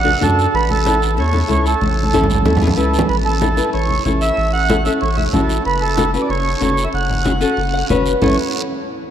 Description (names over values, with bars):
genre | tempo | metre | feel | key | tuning
latin, cumbia | 188 BPM | 4/4 | straight | A major | A4 = 435 Hz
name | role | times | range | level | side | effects
mellow accordion | melody | 0.0-8.4 s | A4 to F#5 | -19 LUFS | right 3 dB | none
nylon-string guitar | accompaniment | 0.0-8.4 s | C#4 to F#5 | -20 LUFS | left 3 dB | none
saturated sub bass | bass | 0.0-8.4 s | F#1 to F#2 | -19 LUFS | equal | none
congas | percussion | 0.1-8.3 s | none | -22 LUFS | right 1 dB | none
guiro | percussion | 0.2-8.3 s | none | -30 LUFS | right 5 dB | none
room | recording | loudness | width
wet cathedral reverb, RT60 5.2 s | in a vast, echoing space | -14 LUFS | side -9 dB against mid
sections
0.0-3.1 A section; 3.1-8.2 B section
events
drum fill 1.8-3.1; nylon-string guitar fill 7.6-8.2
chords
0.0 D; 0.5 A; 5.7 F#m; 8.2 A